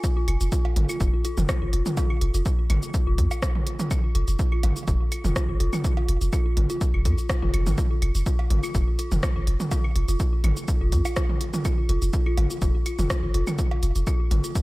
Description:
minimal techno; 124 BPM; 4/4; straight; F minor; A4 = 440 Hz
dark detuned synth bell; riff; 0.0-14.6 s; F4; -32 LUFS; left 1 dB; chorus, phaser, sidechain pumping, dub echo
electronic kick drum; drums; 0.0-14.6 s; -24 LUFS; equal
techno drum kit; drums; 0.0-14.6 s; hi-hat, rim click, shaker; -33 LUFS; equal; tape echo
punchy sub bass; bass; 0.3-14.4 s; F1 to F2; -23 LUFS; equal; sidechain pumping
electronic claves, cowbell and toms; percussion; 0.3-14.4 s; -32 LUFS; right 2 dB; tape echo
little or no reverb; echo-heavy mix; -21 LUFS; side -20 dB against mid
0.0-14.6 A section
drop 0.0-14.6

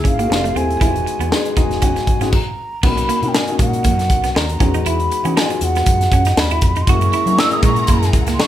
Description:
polished 1980s jazz-funk pop; 119 BPM; 4/4; swing 54% on 16ths; A4 = 440 Hz
warm concert grand piano; accompaniment; 0.0-8.5 s; G#3 to A#4; -22 LUFS; left 5 dB
clean electric guitar; riff; 0.0-8.4 s; G#3 to F#4; -25 LUFS; right 7 dB
overdriven fingered electric bass; bass; 0.0-8.3 s; D#1 to F#3; -21 LUFS; equal
crisp fusion drum kit; drums; 0.0-8.5 s; crash cymbal, hi-hat, kick drum, snare drum; -17 LUFS; equal
mellow hollow concert flute; melody; 0.1-8.5 s; E#5 to E6; -21 LUFS; right 2 dB
rich studio string section; sustained chords; 6.9-8.5 s; E4 to A#5; -28 LUFS; left 2 dB
moderate large studio reverb, RT60 0.9 s; band playing live in one room; -14 LUFS; side -12 dB against mid
0.0-2.8 A section; 2.8-8.5 B section
stop 2.3-2.8
0.3 Fmaj9; 0.8 Emaj9; 2.8 Bmaj9; 4.6 Emaj9; 6.9 F#9

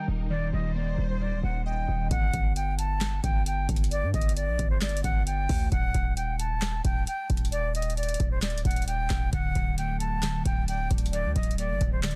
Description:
hip hop, trap; 133 BPM; 4/4; half-time; G harmonic minor; A4 = 440 Hz
reedy concert flute; melody; 0.0-12.2 s; C5 to A5; -35 LUFS; equal; low-pass filter, digital delay
glassy digital keys; accompaniment; 0.0-2.1, 9.3-12.2 s; D3 to Eb5; -36 LUFS; equal; chorus, low-pass filter
rich symphonic string section; sustained chords; 0.0-2.1 s; G3 to C5; -43 LUFS; equal; low-pass filter
hard-hitting 808-style bass; bass; 0.1-12.2 s; D1 to G2; -32 LUFS; equal
booming analog drum machine; drums; 2.1-12.2 s; handclaps, hi-hat, kick drum, snare drum; -30 LUFS; equal
digital ambience; dense, heavily limited modern master; -28 LUFS; mono
0.0-2.1 A section; 2.1-12.2 B section
0.0 Eb; 2.1 G5; 5.7 Eb; 9.3 D

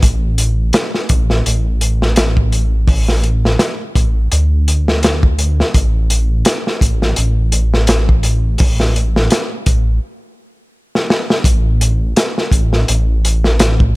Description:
trip hop; 84 BPM; 4/4; swing 57% on 16ths; A4 = 442 Hz
dark detuned saw bass; bass; 0.0-14.0 s; A1 to D2; -14 LUFS; equal; tube saturation
crunchy breakbeat drum kit; drums; 0.0-14.0 s; hi-hat, kick drum, snare drum; -14 LUFS; equal
little or no reverb; -12 LUFS; side -22 dB against mid
0.0-11.5 A section; 11.5-14.0 B section
stop 10.0-11.5; drum fill 10.9-11.5

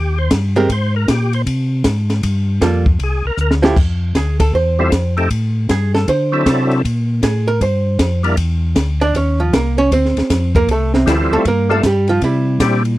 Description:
soul jazz organ trio; 156 BPM; 4/4; swing 65% on 8ths; F major; A4 = 442 Hz
percussive tonewheel organ; melody; 0.0-8.4, 11.1-12.8 s; F#3 to C5; -18 LUFS; left 1 dB; slow rotary speaker, overdrive, chorus vibrato
mellow tonewheel organ; bass; 0.0-13.0 s; C2 to D3; -16 LUFS; equal; slow rotary speaker
compact cocktail drum kit; drums; 0.3-12.9 s; crash cymbal, hi-hat, kick drum, ride cymbal, snare drum; -18 LUFS; equal
archtop guitar, miked and amplified; accompaniment; 0.6-13.0 s; C3 to D5; -17 LUFS; right 3 dB
little or no reverb; dry, close 1970s-style studio recording; -13 LUFS; side -17 dB against mid
0.0-3.8 A section; 3.8-13.0 A section
tonewheel organ solo 0.0-3.8; drum fill 3.4-3.8; hollow-body jazz guitar solo 3.8-13.0
0.0 Eb6; 0.7 Abadd9; 2.2 Gm9; 3.0 Cadd9; 3.8 Fmaj9; 5.3 Gsus2; 6.1 D7; 6.8 Gm7; 8.4 Dsus2; 9.1 Eb5; 9.9 Dm11; 11.4 Gm7; 12.2 C7

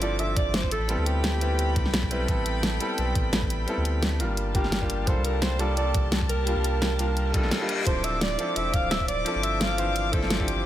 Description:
liquid drum and bass; 172 BPM; 4/4; swing 54% on 16ths; D minor; A4 = 440 Hz
mellow alto saxophone; melody; 0.0-2.1, 4.6-10.5 s; G4 to F5; -30 LUFS; right 2 dB; digital delay
clear baby grand piano; accompaniment; 0.0-10.7 s; E3 to A5; -31 LUFS; equal; tape echo
dark studio string section; sustained chords; 0.0-10.7 s; Bb3 to D6; -33 LUFS; left 2 dB
warm sub bass; bass; 0.0-10.7 s; D1 to D2; -28 LUFS; equal
pop drum kit; drums; 0.0-10.6 s; hi-hat, ride cymbal, snare drum; -29 LUFS; equal; small room reverb
electronic kick drum; drums; 0.4-10.5 s; -27 LUFS; equal; small room reverb
reverse cymbal; sound effects; 7.3-7.9 s; -34 LUFS; left 4 dB
light reverb, digital ambience; -23 LUFS; side -12 dB against mid
0.0-10.7 A section
reverse cymbal 7.3-7.9
0.0 Dm9; 0.7 Am9; 4.2 Gm9; 7.9 Dm9

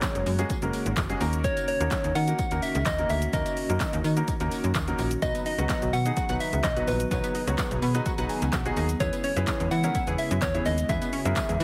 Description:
dance-pop; 127 BPM; 4/4; straight; A4 = 440 Hz
soft struck synth lead; melody; 0.0-11.6 s; B4 to F#5; -32 LUFS; equal; chorus
clear concert grand piano; accompaniment; 0.0-11.5 s; F#3 to B5; -35 LUFS; equal; sidechain pumping
airy breathy pad; sustained chords; 0.0-11.6 s; C#3 to G#4; -38 LUFS; equal
deep house drum kit; drums; 0.0-11.6 s; handclaps, hi-hat, kick drum, shaker, snare drum; -33 LUFS; equal; overdrive
tambourine; percussion; 0.0-11.6 s; -48 LUFS; equal
slap-like FM bass; bass; 0.2-11.6 s; F#1 to E3; -30 LUFS; equal; sidechain pumping
tight sequenced synth; arpeggios; 5.2-11.6 s; F#3 to F#5; -39 LUFS; equal; chorus, sidechain pumping, tape echo
moderate plate reverb, RT60 1.2 s, digital ambience; heavily compressed radio sound; -26 LUFS; mono
0.0-11.6 A section
grand piano fill 7.6-9.0
0.0 F#add9; 1.2 D#m7; 5.2 B; 9.0 E6

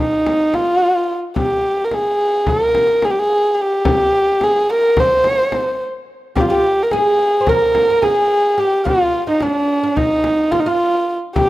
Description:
Turkish makam ensemble; 216 BPM (eighths); 9/8; straight; A4 = 440 Hz
dark kamancheh; melody; 0.0-11.5 s; D4-34c to C5; -14 LUFS; equal
frame drum; percussion; 0.3-11.5 s; -22 LUFS; left 2 dB
oud; second line; 6.4-11.5 s; D4-30c to C5; -24 LUFS; equal
light reverb, small room ambience; rough home demo mix; -14 LUFS; side -16 dB against mid
0.0-6.4 A section; 6.4-11.5 A section

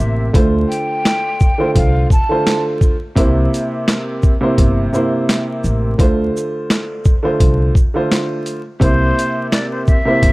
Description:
hip hop, boom-bap hip-hop; 85 BPM; 4/4; swing 56% on 16ths; D minor; A4 = 439 Hz
breathy jazz flute; melody; 0.0-2.6, 8.8-10.3 s; C5 to A5; -20 LUFS; left 1 dB; high-pass filter, low-pass filter, slapback echo
dark upright piano; accompaniment; 0.0-10.3 s; C3 to C5; -18 LUFS; right 1 dB; high-pass filter, low-pass filter
upright bass; bass; 0.0-10.3 s; G1 to D2; -16 LUFS; equal
boom bap sampler-style drum kit; drums; 0.3-10.3 s; handclaps, hi-hat, kick drum, shaker, snare drum; -14 LUFS; equal
small room ambience; dark, warm production, vinyl crackle; -13 LUFS; side -21 dB against mid
0.0-10.3 A section
0.3 Dm7; 3.2 C7; 6.0 Dm7; 8.8 C7

